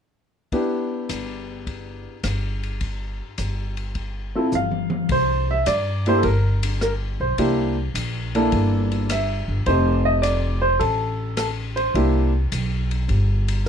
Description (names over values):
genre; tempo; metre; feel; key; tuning
jazz piano trio; 105 BPM; 4/4; swing 69% on 8ths; C mixolydian from 5.1 s; A4 = 440 Hz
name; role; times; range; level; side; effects
clear grand piano; melody; 0.5-13.7 s; A3 to F5; -21 LUFS; right 1 dB; none
open jazz drum kit; drums; 0.5-13.7 s; hi-hat, kick drum, ride cymbal, rim click, toms; -30 LUFS; left 3 dB; none
upright bass; bass; 1.1-13.7 s; F1 to G2; -23 LUFS; equal; none
room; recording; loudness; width
light reverb; dark, warm production; -20 LUFS; side -8 dB against mid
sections
0.5-5.1 A section; 5.1-13.7 B section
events
drum fill 4.5-5.1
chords
0.5 G6; 5.1 C7; 9.7 F7; 11.9 C7(no3)